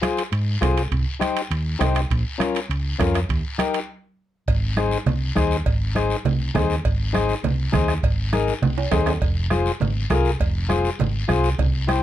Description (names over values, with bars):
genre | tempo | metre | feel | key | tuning
latin, cumbia | 202 BPM | 4/4 | straight | unclear | A4 = 441 Hz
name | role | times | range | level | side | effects
combo organ | accompaniment | 0.0-12.0 s | Db4 to C5 | -23 LUFS | left 5 dB | none
bombo | percussion | 0.0-12.0 s | none | -24 LUFS | right 2 dB | none
congas | percussion | 0.0-12.0 s | none | -27 LUFS | right 3 dB | none
guiro | percussion | 0.0-12.0 s | none | -34 LUFS | left 5 dB | none
timbales and cowbell | percussion | 0.0-11.7 s | none | -30 LUFS | right 7 dB | none
hollow-body short-scale fingered electric bass | bass | 0.3-12.0 s | F1 to Ab2 | -23 LUFS | equal | none
room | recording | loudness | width
light reverb | dark, warm production | -19 LUFS | side -12 dB against mid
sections
0.0-4.5 A section; 4.5-12.0 B section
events
stop 3.9-4.5; drum fill 8.8-9.2; transistor combo organ fill 11.1-11.6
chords
0.0 Fm; 0.9 Cm; 2.1 Bbm; 3.3 Eb; 4.5 Ab; 9.2 Fm